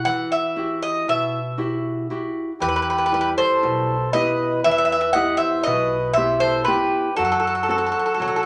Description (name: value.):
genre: greek folk, Greek bouzouki band.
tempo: 118 BPM (eighths).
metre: 9/8.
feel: straight.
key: E harmonic minor.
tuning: A4 = 440 Hz.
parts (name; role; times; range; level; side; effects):
Greek bouzouki; melody; 0.0-8.5 s; A4 to F#5; -23 LUFS; equal; none.
nylon-string guitar; accompaniment; 0.0-8.5 s; B2 to A4; -28 LUFS; equal; none.
mellow accordion; second line; 2.6-8.5 s; F#4 to D#5; -26 LUFS; equal; none.
upright bass; bass; 2.6-8.5 s; B1 to C3; -37 LUFS; equal; none.
room: wet club reverb, RT60 0.7 s.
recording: none.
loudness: -21 LUFS.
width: mono.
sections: 0.0-2.6 A section; 2.6-8.5 B section.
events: none.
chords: 0.0 Emadd9; 2.6 Em; 7.2 F#dim.